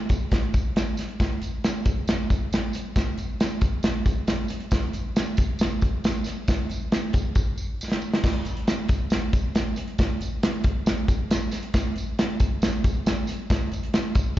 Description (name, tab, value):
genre	soul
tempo	137 BPM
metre	4/4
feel	straight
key	none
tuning	none
part	natural country drum kit	drums	0.1-14.3 s	hi-hat, kick drum, snare drum, splash cymbal	-23 LUFS	equal	slapback echo
part	tambourine	percussion	0.1-14.3 s	none	-41 LUFS	right 2 dB	slapback echo
room	light reverb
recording	live gig heard through the venue's PA, recital hall reverb, nothing above 7.5 kHz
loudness	-22 LUFS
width	side -14 dB against mid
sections	0.0-1.2 A section; 1.2-14.4 B section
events	drum fill 7.4-8.2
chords	none